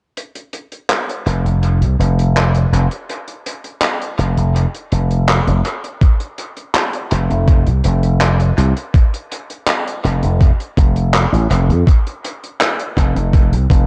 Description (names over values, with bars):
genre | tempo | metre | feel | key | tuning
vaporwave | 82 BPM | 4/4 | straight | F major | A4 = 440 Hz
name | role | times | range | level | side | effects
open jazz drum kit | drums | 0.2-13.9 s | handclaps, hi-hat | -23 LUFS | equal | vintage 12-bit sampler grit, dub echo
slap bass with an envelope filter | bass | 1.3-13.9 s | F1 to F2 | -16 LUFS | equal | none
electronic kick drum | drums | 6.0-13.9 s | none | -13 LUFS | equal | vintage 12-bit sampler grit
room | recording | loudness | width
little or no reverb | echo-heavy mix, cassette tape | -16 LUFS | mono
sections
0.2-11.9 A section; 11.9-13.9 B section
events
none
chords
none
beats
| 0.17 0.90 1.63 2.36 | 3.09 3.83 4.56 5.29 | 6.02 6.75 7.48 8.21 | 8.95 9.68 10.41 11.14 | 11.87 12.61 13.34